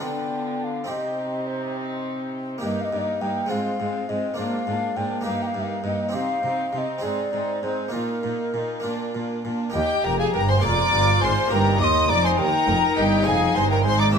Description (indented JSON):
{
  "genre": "classical, baroque-style concerto movement with solo episodes",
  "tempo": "68 BPM (dotted quarters)",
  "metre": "6/8",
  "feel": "straight",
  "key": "Eb major",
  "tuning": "A4 = 442 Hz",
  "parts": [
    { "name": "mellow hollow wooden flute", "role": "melody", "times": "0.0-14.2 s", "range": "Bb4 to D6", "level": "-26 LUFS", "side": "left 1 dB", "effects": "none" },
    { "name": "warm chamber violin section", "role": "melody", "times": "0.0-14.2 s", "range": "F4 to E6", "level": "-30 LUFS", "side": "left 4 dB", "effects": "none" },
    { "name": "warm chamber violin section", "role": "second line", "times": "0.0-14.2 s", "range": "C4 to E5", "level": "-28 LUFS", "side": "left 1 dB", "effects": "none" },
    { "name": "dark chamber viola section", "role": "accompaniment", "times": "0.0-14.2 s", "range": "Ab3 to G4", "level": "-30 LUFS", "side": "left 3 dB", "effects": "none" },
    { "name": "harpsichord", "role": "accompaniment", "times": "0.0-14.2 s", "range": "Eb2 to Ab4", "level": "-31 LUFS", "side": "right 2 dB", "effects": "none" },
    { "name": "warm chamber cello section", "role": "bass", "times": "0.0-14.2 s", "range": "Eb2 to D3", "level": "-28 LUFS", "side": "right 3 dB", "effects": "none" },
    { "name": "rich chamber double bass section", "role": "bass", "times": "9.7-14.2 s", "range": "F1 to Eb2", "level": "-26 LUFS", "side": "right 3 dB", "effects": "none" }
  ],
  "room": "moderate recital hall reverb, RT60 1.6 s",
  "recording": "none",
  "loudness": "-21 LUFS",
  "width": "side -6 dB against mid",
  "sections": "0.0-9.7 A section; 9.7-14.2 B section",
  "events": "none",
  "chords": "0.0 Bdim/D; 0.9 Cm; 2.6 Eb/G; 3.5 Fm/Ab; 4.4 Bb7/Ab; 5.3 Eb/G; 6.1 Cm; 7.0 Ab; 7.9 Bbsus4; 8.8 Bb; 9.7 Eb; 10.6 Bb7/F; 11.5 Eb; 13.3 Fm"
}